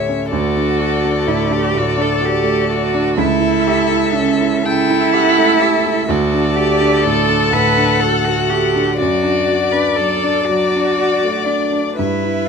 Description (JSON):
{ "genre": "classical, slow romantic movement for piano quartet", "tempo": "41 BPM (dotted quarters)", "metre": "6/8", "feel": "rubato", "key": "D major", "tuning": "A4 = 440 Hz", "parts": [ { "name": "muted violin", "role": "melody", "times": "0.0-12.5 s", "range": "A4 to D5", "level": "-21 LUFS", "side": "left 7 dB", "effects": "none" }, { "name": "muted violin", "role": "second line", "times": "0.0-12.5 s", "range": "D5 to G5", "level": "-22 LUFS", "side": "left 5 dB", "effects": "none" }, { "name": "warm concert grand piano", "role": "accompaniment", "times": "0.0-12.5 s", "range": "C#2 to G4", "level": "-18 LUFS", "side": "right 2 dB", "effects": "none" }, { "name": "muted cello", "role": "second line", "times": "0.3-12.5 s", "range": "C#4 to B4", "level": "-17 LUFS", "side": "right 3 dB", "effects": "none" } ], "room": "light reverb", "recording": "close, detailed microphones", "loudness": "-13 LUFS", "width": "side -5 dB against mid", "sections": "0.0-12.5 A section", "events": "none", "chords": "0.3 D; 3.2 A7/C#; 6.1 D; 9.0 D/F#; 12.0 Em/G", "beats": "| 0.31 1.76 | 3.18 4.64 | 6.08 7.51 | 8.98 10.46 | 11.99" }